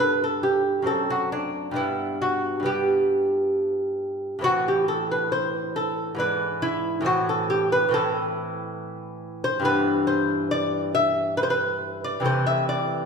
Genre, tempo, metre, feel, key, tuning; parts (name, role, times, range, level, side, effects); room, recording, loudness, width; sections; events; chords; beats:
classical, baroque-style dance for lute; 69 BPM; 3/4; rubato; E minor from 9.7 s; A4 = 442 Hz
lute; solo; 0.0-13.1 s; F#2 to E5; -22 LUFS; equal
wet recital hall reverb, RT60 1.4 s; recorded in a church or concert hall; -22 LUFS; side -5 dB against mid
0.0-13.1 A section
0.0 G; 0.9 D7/F#; 1.8 G; 4.4 Am; 6.2 E7/G#; 7.1 Am; 9.7 Em/G; 12.2 Am/C
0.87 | 1.76 2.65 3.54 | 4.43 5.32 6.19 | 7.06 7.93 8.79 | 9.65 10.52 11.38 | 12.24